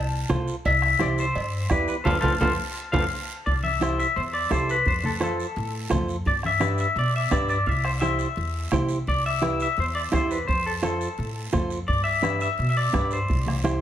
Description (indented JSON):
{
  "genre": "latin, cumbia",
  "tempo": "171 BPM",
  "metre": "4/4",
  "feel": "straight",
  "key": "C major",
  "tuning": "A4 = 440 Hz",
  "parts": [
    { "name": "clean electric guitar", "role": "melody", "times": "0.0-13.8 s", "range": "A4 to A5", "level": "-26 LUFS", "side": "left 3 dB", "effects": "spring reverb, slapback echo" },
    { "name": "upright bass", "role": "bass", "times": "0.0-13.8 s", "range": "C2 to B2", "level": "-28 LUFS", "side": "equal", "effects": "none" },
    { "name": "clean electric guitar", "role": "accompaniment", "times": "0.3-13.8 s", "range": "D4 to D5", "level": "-28 LUFS", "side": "right 3 dB", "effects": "none" },
    { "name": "bombo", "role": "percussion", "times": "0.3-13.8 s", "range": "none", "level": "-28 LUFS", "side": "right 1 dB", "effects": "none" },
    { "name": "congas", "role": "percussion", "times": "0.3-13.8 s", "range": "none", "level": "-31 LUFS", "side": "left 2 dB", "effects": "none" },
    { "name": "guiro", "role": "percussion", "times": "0.3-13.8 s", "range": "none", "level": "-41 LUFS", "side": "right 6 dB", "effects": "none" },
    { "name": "cowbell and timbales", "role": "percussion", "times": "0.7-3.0 s", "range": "none", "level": "-32 LUFS", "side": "right 4 dB", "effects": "none" }
  ],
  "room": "light reverb",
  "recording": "none",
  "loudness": "-22 LUFS",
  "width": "side -11 dB against mid",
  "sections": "0.0-3.5 A section; 3.5-13.8 B section",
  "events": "band accent 2.1-3.5; drum fill 2.6-3.5",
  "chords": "0.0 F; 0.7 C; 2.1 F; 3.5 C; 4.9 F; 6.3 G; 7.7 C; 10.5 F; 11.9 G; 13.3 C"
}